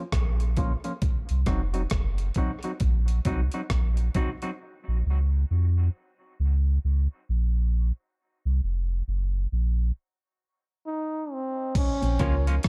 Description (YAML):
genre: dub reggae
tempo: 67 BPM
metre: 4/4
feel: swing 60% on 16ths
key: Bb minor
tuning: A4 = 440 Hz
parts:
  - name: electric guitar at the edge of break-up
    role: accompaniment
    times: 0.0-4.5, 12.2-12.5 s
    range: F3 to Gb4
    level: -36 LUFS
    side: equal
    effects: low-pass filter, dub echo
  - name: warm sub bass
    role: bass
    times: 0.1-12.7 s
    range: F1 to F2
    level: -26 LUFS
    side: equal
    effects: none
  - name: breakbeat sampler-style drum kit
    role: drums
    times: 0.1-4.6, 11.8-12.7 s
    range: crash cymbal, hi-hat, kick drum, rim click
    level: -30 LUFS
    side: equal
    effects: none
  - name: clear trombone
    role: melody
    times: 10.9-12.6 s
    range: C4 to Eb4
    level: -32 LUFS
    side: equal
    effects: dub echo
  - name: mellow electric guitar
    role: riff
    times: 12.0-12.7 s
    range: Bb2 to F3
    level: -35 LUFS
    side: equal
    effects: none
  - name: warm concert grand piano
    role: stabs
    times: 12.2-12.4 s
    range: Db4 to Db5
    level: -37 LUFS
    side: equal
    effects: low-pass filter, dub echo
room: digital ambience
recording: dark, warm production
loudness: -27 LUFS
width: mono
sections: 0.0-11.8 A section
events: break 0.0-11.8; part muted 4.6-11.8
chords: 0.0 Bbm; 1.0 Cdim; 4.6 Bbm; 8.2 Fsus4; 11.8 Bbm